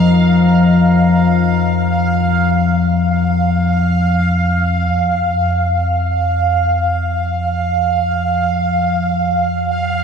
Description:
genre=ambient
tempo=free time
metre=none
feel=none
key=unclear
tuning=A4 = 442 Hz
part: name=dark analog pad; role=sustained chords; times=0.0-4.9 s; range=F4 to Bb5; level=-26 LUFS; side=left 1 dB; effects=chorus
part: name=deep rumbling drone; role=drone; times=0.0-10.0 s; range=F2 to F3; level=-14 LUFS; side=left 2 dB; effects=built-in reverb
part: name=bubbling stepped-filter texture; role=texture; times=0.0-10.0 s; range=F5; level=-17 LUFS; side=right 3 dB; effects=chorus, built-in reverb
room=wet cathedral reverb, RT60 5.5 s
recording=dark, warm production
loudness=-13 LUFS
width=side -6 dB against mid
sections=0.0-4.9 A section; 4.9-10.0 B section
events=fade-out on analog synth pad 0.0-4.9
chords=0.0 F5; 4.9 N.C.

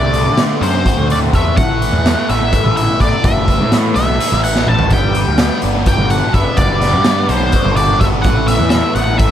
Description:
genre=psychedelic rock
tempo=251 BPM (eighths)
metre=7/8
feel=straight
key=A dorian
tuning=A4 = 440 Hz
part: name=octave-fuzz lead guitar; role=melody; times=0.0-9.3 s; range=C5 to A5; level=-18 LUFS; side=equal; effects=wah, distortion, analog delay
part: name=fuzz guitar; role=riff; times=0.0-9.3 s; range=A2 to A4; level=-18 LUFS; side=left 1 dB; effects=distortion, phaser, analog delay
part: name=fuzz picked electric bass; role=bass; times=0.0-9.3 s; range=F#1 to D3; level=-17 LUFS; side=equal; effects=overdrive
part: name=raw garage drum kit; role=drums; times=0.1-9.3 s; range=hi-hat, kick drum, snare drum, toms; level=-16 LUFS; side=equal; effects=none
part: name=congas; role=percussion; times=0.4-9.2 s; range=none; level=-26 LUFS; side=right 4 dB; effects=none
room=light reverb, small room ambience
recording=echo-heavy mix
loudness=-11 LUFS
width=side -10 dB against mid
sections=0.0-9.3 A section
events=drum fill 4.6-4.9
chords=0.0 D7; 1.6 Asus2; 4.9 Gmaj7; 8.3 Asus2

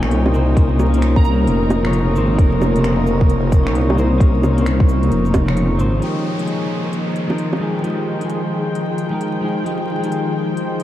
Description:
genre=future garage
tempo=132 BPM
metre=4/4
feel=swing 63% on 16ths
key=F minor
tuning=A4 = 440 Hz
part: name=glassy wavetable pluck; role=melody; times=0.0-1.3 s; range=Ab5 to Bb5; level=-32 LUFS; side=right 2 dB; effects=chorus, cassette tape, diffuse ambient delay
part: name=clean electric guitar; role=accompaniment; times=0.0-10.8 s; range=C3 to Db5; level=-23 LUFS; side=left 2 dB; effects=sidechain pumping, ping-pong delay
part: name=warm chamber string section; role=sustained chords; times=0.0-10.8 s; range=Bb2 to G5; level=-21 LUFS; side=equal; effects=sidechain pumping
part: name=swelling detuned saw bass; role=bass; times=0.0-6.0 s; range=F1 to C2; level=-17 LUFS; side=equal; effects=sidechain pumping
part: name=organic electronic drum kit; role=drums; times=0.0-10.8 s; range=bongos, cabasa, finger snaps, hi-hat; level=-26 LUFS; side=right 2 dB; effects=none
part: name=drifting glass-harmonics texture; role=texture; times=0.5-10.8 s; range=C5 to Db5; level=-32 LUFS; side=equal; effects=chorus, built-in reverb
part: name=electronic kick drum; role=drums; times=0.6-5.5 s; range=none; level=-14 LUFS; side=equal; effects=none
part: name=downlifter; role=sound effects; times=6.0-9.7 s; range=none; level=-35 LUFS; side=equal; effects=none
room=wet huge ambient reverb, RT60 7.7 s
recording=dreamy mix soaked in reverb, vinyl crackle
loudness=-15 LUFS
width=side -13 dB against mid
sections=0.0-6.0 A section; 6.0-10.8 B section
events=none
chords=0.0 Bbmadd9/F; 6.0 Fm9

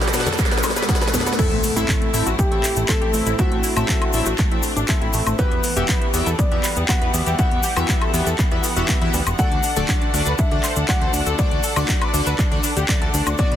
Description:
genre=progressive house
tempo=120 BPM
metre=4/4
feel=straight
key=A dorian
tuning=A4 = 440 Hz
part: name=clear studio string section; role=sustained chords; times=0.0-13.6 s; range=B2 to F#5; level=-30 LUFS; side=equal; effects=sidechain pumping
part: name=tight sequenced synth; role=arpeggios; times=0.0-13.6 s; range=A3 to C5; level=-28 LUFS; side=left 1 dB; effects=chorus, sidechain pumping, digital delay
part: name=chorused polysynth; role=stabs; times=0.0-13.6 s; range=A2 to F#5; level=-26 LUFS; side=left 2 dB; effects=sidechain pumping, digital delay
part: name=house drum kit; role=drums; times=0.0-13.6 s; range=crash cymbal, handclaps, hi-hat, snare drum, woodblock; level=-25 LUFS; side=left 1 dB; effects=overdrive, sidechain pumping on hats, sidechain pumping on perc, sidechain pumping on cymbals
part: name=riser, noise sweep and impact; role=sound effects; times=0.0-3.4 s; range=none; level=-27 LUFS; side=equal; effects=none
part: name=cabasa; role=percussion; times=0.1-13.5 s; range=none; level=-29 LUFS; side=left 6 dB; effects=none
part: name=congas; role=percussion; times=0.3-1.2 s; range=none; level=-28 LUFS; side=equal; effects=sidechain pumping on perc
part: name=electronic kick drum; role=drums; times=0.4-13.5 s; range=none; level=-21 LUFS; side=equal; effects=overdrive
part: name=dark grand piano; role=melody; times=1.4-13.6 s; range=F#4 to F#5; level=-28 LUFS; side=left 1 dB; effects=tape echo
part: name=plucky analog bass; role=bass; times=1.5-13.6 s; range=D1 to A2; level=-24 LUFS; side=equal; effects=sidechain pumping
room=light reverb, digital ambience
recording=dense, heavily limited modern master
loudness=-17 LUFS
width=side -10 dB against mid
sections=0.0-1.4 A section; 1.4-13.6 B section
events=build-up 0.0-1.4; drum fill 0.0-1.4; riser 0.0-1.4; noise sweep 0.0-1.4; drop 1.4-13.6; impact 1.4-3.4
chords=0.0 Bm; 1.4 Am; 5.4 Emadd9; 9.4 D

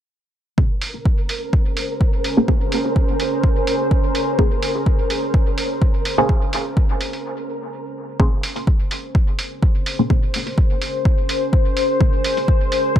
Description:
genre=dub techno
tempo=126 BPM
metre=4/4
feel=swing 54% on 16ths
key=Bb minor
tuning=A4 = 440 Hz
part: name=deep dark ambient pad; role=sustained chords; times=1.4-13.0 s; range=Db4 to C5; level=-24 LUFS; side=left 1 dB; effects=chorus, built-in reverb, sidechain pumping
part: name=filtered dub chord stab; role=stabs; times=0.6-12.2 s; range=Bb3 to C5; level=-22 LUFS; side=equal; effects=phaser, sidechain pumping, dub echo
part: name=electronic kick drum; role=drums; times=0.6-13.0 s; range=none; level=-17 LUFS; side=equal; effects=overdrive, studio ambience
part: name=flickering grainy texture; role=texture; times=0.9-7.2 s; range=Bb4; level=-30 LUFS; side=right 1 dB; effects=built-in reverb, sidechain pumping
part: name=electronic hi-hat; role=drums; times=0.8-12.8 s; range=none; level=-27 LUFS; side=right 2 dB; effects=studio ambience
room=light reverb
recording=echo-heavy mix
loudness=-17 LUFS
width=side -10 dB against mid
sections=0.6-8.2 A section; 8.2-13.0 B section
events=filter sweep on synth stab 0.6-8.2, 8.2-13.0; break 7.2-8.2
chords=0.6 Bbm9

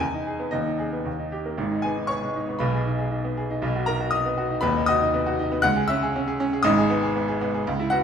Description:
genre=classical, virtuoso piano study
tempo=118 BPM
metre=2/4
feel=rubato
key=G# minor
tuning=A4 = 441 Hz
part: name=clear baby grand piano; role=solo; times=0.0-8.0 s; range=D#1 to F#6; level=-22 LUFS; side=equal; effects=none
room=wet large studio reverb, RT60 0.9 s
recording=heard from further back in the room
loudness=-22 LUFS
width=side -7 dB against mid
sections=0.0-1.6 A section; 1.6-8.0 B section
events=none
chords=0.0 Emaj7; 0.5 G#m/D#; 1.1 D#; 1.6 G#m; 2.6 G#m/B; 3.6 B; 4.6 B/D#; 5.6 C#m; 6.6 G#m

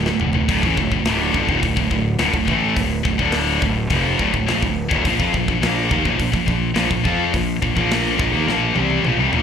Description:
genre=heavy metal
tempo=105 BPM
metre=4/4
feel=straight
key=D phrygian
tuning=A4 = 439 Hz
part: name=distorted electric guitar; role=riff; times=0.0-9.4 s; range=D2 to F4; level=-23 LUFS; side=right 9 dB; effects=distortion, slapback echo
part: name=heavy high-gain guitar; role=riff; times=0.0-9.4 s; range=D2 to F4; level=-20 LUFS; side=left 11 dB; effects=distortion
part: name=fuzz fingered electric bass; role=bass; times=0.0-9.4 s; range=D1 to F2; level=-23 LUFS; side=left 1 dB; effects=overdrive
part: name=tight metal drum kit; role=drums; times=0.1-9.4 s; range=hi-hat, kick drum, snare drum, toms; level=-24 LUFS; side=equal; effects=none
room=little or no reverb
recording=live gig heard through the venue's PA, club reverb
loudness=-16 LUFS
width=side -7 dB against mid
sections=0.5-9.4 A section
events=drum fill 0.0-0.5, 8.5-9.4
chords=0.5 Dm; 5.0 Bb5

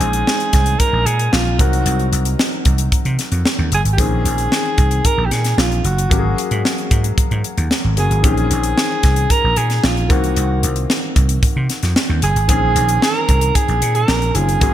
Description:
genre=polished 1980s jazz-funk pop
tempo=113 BPM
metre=4/4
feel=straight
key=Bb minor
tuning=A4 = 441 Hz
part: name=breathy alto saxophone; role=melody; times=0.0-14.7 s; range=F4 to Bb4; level=-20 LUFS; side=right 2 dB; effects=ping-pong delay
part: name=warm concert grand piano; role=accompaniment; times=0.0-14.7 s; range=Eb3 to C5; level=-24 LUFS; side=left 5 dB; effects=lush chorus
part: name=vintage slap bass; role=bass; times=0.0-14.7 s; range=Gb1 to C3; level=-17 LUFS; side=equal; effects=none
part: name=crisp fusion drum kit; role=drums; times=0.0-14.7 s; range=hi-hat, kick drum, snare drum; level=-18 LUFS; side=equal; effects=gated reverb
room=light reverb, small room ambience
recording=bright 1980s-style digital production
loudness=-14 LUFS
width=side -12 dB against mid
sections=0.0-14.7 A section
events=none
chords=0.0 Bbm11; 1.6 Cm7b5; 4.0 Bbm11; 6.1 Ab9sus4; 8.2 Bbm11; 10.1 Cm7b5; 12.5 Bbm11

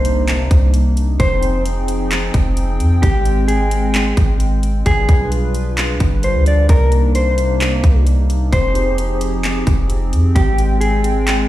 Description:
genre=hip hop, atmospheric cloud-rap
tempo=131 BPM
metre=4/4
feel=half-time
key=C minor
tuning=A4 = 438 Hz
part: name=mellow electric guitar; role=melody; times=0.0-11.5 s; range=G4 to D5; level=-21 LUFS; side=left 1 dB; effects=warbly pitch drift, low-pass filter, tape echo
part: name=hollow soft pad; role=sustained chords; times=0.0-11.5 s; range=C3 to G5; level=-22 LUFS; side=equal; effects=chorus, sidechain pumping
part: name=soft 808-style bass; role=bass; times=0.0-11.5 s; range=F1 to F2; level=-16 LUFS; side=equal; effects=none
part: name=trap drum kit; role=drums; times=0.0-11.4 s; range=handclaps, hi-hat, kick drum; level=-18 LUFS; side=equal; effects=overdrive
part: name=impact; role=sound effects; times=0.0-1.2 s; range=none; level=-31 LUFS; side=equal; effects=none
room=little or no reverb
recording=played on a big sound system in a bare room, stone room reverb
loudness=-13 LUFS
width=side -14 dB against mid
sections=0.0-11.5 A section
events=impact 0.0-1.2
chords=0.0 Cm9; 1.2 Fm7; 3.0 Abmaj7; 4.9 G7b9; 6.7 Cm9; 8.5 Fm7; 10.4 Abmaj7

